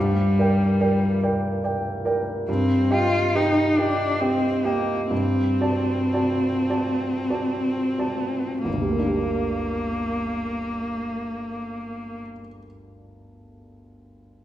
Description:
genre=classical, romantic duo for cello and grand piano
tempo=28-48 BPM (dotted quarters)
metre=6/8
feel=rubato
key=G minor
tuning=A4 = 440 Hz
part: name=rich cello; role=melody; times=0.0-12.2 s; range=G3 to F4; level=-23 LUFS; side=left 1 dB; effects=none
part: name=warm grand piano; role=accompaniment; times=0.0-14.4 s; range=G1 to A5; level=-25 LUFS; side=right 1 dB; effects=none
room=wet recital hall reverb, RT60 1.5 s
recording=heard from further back in the room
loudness=-21 LUFS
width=side -12 dB against mid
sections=0.0-2.5 A section; 2.5-8.7 B section; 8.7-12.3 C section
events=slowing down 1.2-8.7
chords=0.0 Gm; 2.5 Eb6/G; 5.1 D7/G; 8.7 Gm

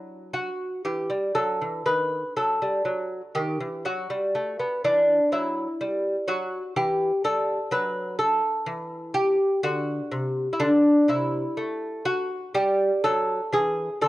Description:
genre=classical, baroque-style dance for lute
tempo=62 BPM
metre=3/4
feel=rubato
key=E minor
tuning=A4 = 440 Hz
part: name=lute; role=solo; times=0.0-14.1 s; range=C3 to B4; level=-22 LUFS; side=equal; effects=cassette tape
room=studio reverb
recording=home recording on cassette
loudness=-22 LUFS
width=side -17 dB against mid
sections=0.0-14.1 A section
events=none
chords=0.0 N.C.; 0.8 Em; 1.9 D#dim; 4.8 Em; 7.7 F#dim; 10.6 D5; 12.6 F#m; 13.5 Dsus2

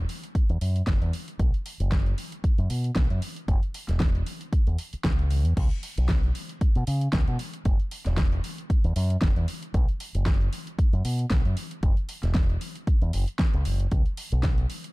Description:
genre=nu-disco, nu disco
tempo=115 BPM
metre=4/4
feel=swing 55% on 16ths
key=unclear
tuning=A4 = 440 Hz
part: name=fingered electric bass with an envelope filter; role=bass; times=0.0-14.6 s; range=E1 to C#3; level=-25 LUFS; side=equal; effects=tube saturation, sidechain pumping
part: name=pop drum kit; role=drums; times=0.1-14.9 s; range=crash cymbal, hi-hat, snare drum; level=-33 LUFS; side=equal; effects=overdrive
part: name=electronic kick drum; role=drums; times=0.3-14.6 s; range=none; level=-24 LUFS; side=equal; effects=overdrive
room=little or no reverb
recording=dark, warm production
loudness=-23 LUFS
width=side -22 dB against mid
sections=0.0-14.9 A section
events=none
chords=none

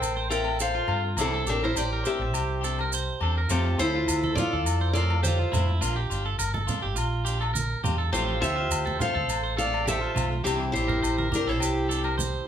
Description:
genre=highlife guitar band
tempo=104 BPM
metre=4/4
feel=swing 53% on 16ths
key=F major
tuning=A4 = 439 Hz
part: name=picked steel-string acoustic guitar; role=melody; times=0.0-12.5 s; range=C4 to G5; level=-28 LUFS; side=left 2 dB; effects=none
part: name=breathy trumpet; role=second line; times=0.0-12.5 s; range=E4 to E5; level=-35 LUFS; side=right 4 dB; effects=none
part: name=electric guitar at the edge of break-up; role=arpeggios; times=0.0-12.4 s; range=E4 to C5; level=-32 LUFS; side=right 5 dB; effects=none
part: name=mellow fretless electric bass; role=bass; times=0.0-12.4 s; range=G1 to G2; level=-28 LUFS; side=equal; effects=none
part: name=agogo bells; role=percussion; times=0.0-12.2 s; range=none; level=-35 LUFS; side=left 6 dB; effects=none
part: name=maracas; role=percussion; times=0.0-12.3 s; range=none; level=-35 LUFS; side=right 5 dB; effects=none
part: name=electric guitar at the edge of break-up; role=accompaniment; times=0.3-12.1 s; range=E3 to G4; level=-36 LUFS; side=left 5 dB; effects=none
part: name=congas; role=percussion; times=4.2-12.3 s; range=none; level=-33 LUFS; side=right 3 dB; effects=none
room=moderate large studio reverb, RT60 0.9 s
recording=band playing live in one room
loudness=-24 LUFS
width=side -9 dB against mid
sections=0.0-12.5 A section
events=none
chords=0.0 F/A; 1.2 Cadd9; 3.5 F; 5.8 Bb; 8.1 F/A; 10.4 Cadd9

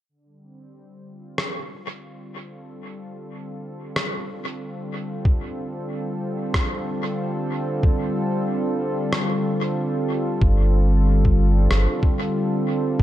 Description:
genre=ambient dub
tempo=93 BPM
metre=4/4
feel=swing 58% on 16ths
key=unclear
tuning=A4 = 440 Hz
part: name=warm analog pad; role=sustained chords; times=0.1-13.0 s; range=D3 to A4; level=-25 LUFS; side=equal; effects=chorus
part: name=electronic rim click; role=drums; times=1.4-11.9 s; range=none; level=-28 LUFS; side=equal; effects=dub echo
part: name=electronic kick drum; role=drums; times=5.3-13.0 s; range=none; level=-20 LUFS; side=equal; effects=none
part: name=soft dub sub bass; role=bass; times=10.4-13.0 s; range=G1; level=-17 LUFS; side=equal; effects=none
room=light reverb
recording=echo-heavy mix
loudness=-20 LUFS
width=side -13 dB against mid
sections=0.1-10.4 A section; 10.4-13.0 B section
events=fade-in on analog synth pad 0.1-10.4; kick drops out 9.1-10.4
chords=0.1 F69/D; 10.4 G9sus4

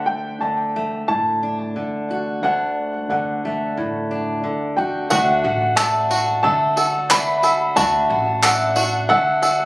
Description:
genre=indie folk with a building arrangement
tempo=90 BPM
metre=4/4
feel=straight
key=D major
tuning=A4 = 439 Hz
part: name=dark upright piano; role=melody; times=0.0-9.7 s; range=F#5 to B5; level=-20 LUFS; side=equal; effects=digital delay
part: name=fingerpicked steel-string acoustic guitar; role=accompaniment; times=0.0-7.8 s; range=D2 to F#4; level=-25 LUFS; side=equal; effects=none
part: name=picked acoustic archtop guitar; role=accompaniment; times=5.1-9.7 s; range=D3 to F#4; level=-21 LUFS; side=equal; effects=none
part: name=bluegrass banjo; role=arpeggios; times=5.1-9.7 s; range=F#4 to B4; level=-22 LUFS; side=right 1 dB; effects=none
part: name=upright bass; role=bass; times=5.1-9.7 s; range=A1 to D3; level=-28 LUFS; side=equal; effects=none
part: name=tambourine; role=percussion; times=5.1-9.6 s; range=none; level=-26 LUFS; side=equal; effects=none
part: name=group handclap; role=percussion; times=5.8-8.6 s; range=none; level=-20 LUFS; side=equal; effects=none
room=moderate echo chamber reverb, RT60 2.2 s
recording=recorded on a phone in the room, club reverb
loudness=-17 LUFS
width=side -20 dB against mid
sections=0.0-5.1 A section; 5.1-9.7 B section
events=none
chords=0.0 D

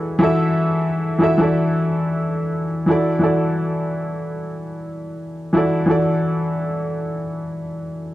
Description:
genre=R&B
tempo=free time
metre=none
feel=none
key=unclear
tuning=A4 = 437 Hz
part: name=warm upright piano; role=solo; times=0.0-8.1 s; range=E3 to E5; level=-18 LUFS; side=equal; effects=none
room=small room ambience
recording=dry, close 1970s-style studio recording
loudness=-18 LUFS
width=side -15 dB against mid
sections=0.0-2.9 A section; 2.9-8.1 B section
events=none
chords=0.0 E9sus4

